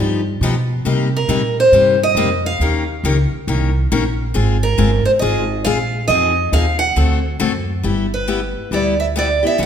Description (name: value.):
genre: acoustic string swing (jazz manouche).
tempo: 138 BPM.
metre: 4/4.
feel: swing 63% on 8ths.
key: Eb major.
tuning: A4 = 442 Hz.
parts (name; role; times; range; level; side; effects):
picked steel-string acoustic guitar; accompaniment; 0.0-9.7 s; C3 to Bb4; -20 LUFS; left 5 dB; none.
upright bass; bass; 0.0-9.7 s; F#1 to C3; -19 LUFS; right 1 dB; none.
picked steel-string acoustic guitar; melody; 1.2-9.7 s; Bb4 to Gb5; -16 LUFS; right 2 dB; none.
room: moderate scoring stage reverb, RT60 1.6 s.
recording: recorded in a church or concert hall.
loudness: -14 LUFS.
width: side -8 dB against mid.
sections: 0.0-7.8 A section; 7.8-9.7 B section.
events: none.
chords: 0.0 Gaug7; 0.9 Cm7; 2.6 Eb13; 4.3 Ab69; 6.1 Fm7; 7.0 D7; 7.8 G6.